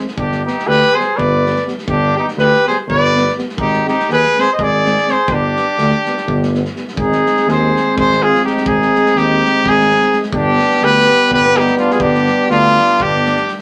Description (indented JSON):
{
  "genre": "balkan folk, Balkan brass band",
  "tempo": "249 BPM (eighths)",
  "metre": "7/8",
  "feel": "straight",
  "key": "G phrygian dominant",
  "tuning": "A4 = 440 Hz",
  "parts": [
    { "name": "dark euphonium", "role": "accompaniment", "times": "0.0-13.6 s", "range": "G3 to Ab3", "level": "-28 LUFS", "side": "equal", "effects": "none" },
    { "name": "warm euphonium", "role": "accompaniment", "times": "0.0-13.5 s", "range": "B3 to C4", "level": "-23 LUFS", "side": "equal", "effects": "none" },
    { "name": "loose indie drum kit", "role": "percussion", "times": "0.1-13.6 s", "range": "kick drum, snare drum", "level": "-30 LUFS", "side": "equal", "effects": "none" },
    { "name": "bright trumpet", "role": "melody", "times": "0.2-13.5 s", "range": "F4 to Eb5", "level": "-16 LUFS", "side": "equal", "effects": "none" },
    { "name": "warm trumpet", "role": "second line", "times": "0.2-13.5 s", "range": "D4 to C5", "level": "-22 LUFS", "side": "equal", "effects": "none" },
    { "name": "mellow tuba", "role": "bass", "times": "0.2-13.4 s", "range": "G1 to Eb2", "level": "-22 LUFS", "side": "equal", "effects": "none" }
  ],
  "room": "wet club reverb, RT60 0.5 s",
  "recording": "none",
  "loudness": "-14 LUFS",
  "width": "mono",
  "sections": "0.0-7.0 A section; 7.0-13.6 B section",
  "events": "none",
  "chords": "0.2 G; 3.6 Ab; 5.3 G; 7.0 Ab; 10.3 G"
}